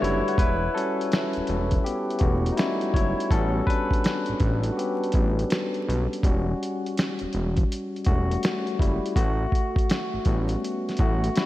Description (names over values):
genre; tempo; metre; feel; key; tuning
lo-fi hip hop; 82 BPM; 4/4; swing 66% on 16ths; E dorian; A4 = 441 Hz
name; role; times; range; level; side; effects
barky tine electric piano; accompaniment; 0.0-11.5 s; G3 to F#5; -26 LUFS; left 2 dB; medium stereo tremolo, cassette tape, low-pass filter
fat analog bass; bass; 0.0-11.3 s; E1 to B1; -26 LUFS; equal; none
lo-fi sampler-style drum kit; drums; 0.0-11.5 s; hi-hat, kick drum, snare drum; -25 LUFS; equal; vintage 12-bit sampler grit
room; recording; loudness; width
moderate lush hall reverb, RT60 2.6 s; dreamy mix soaked in reverb, vinyl crackle; -22 LUFS; side -15 dB against mid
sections
0.4-11.5 A section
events
break 0.0-0.4; tine electric piano solo 0.4-11.5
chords
0.4 Em69; 3.3 A13; 6.2 Em69; 9.2 A13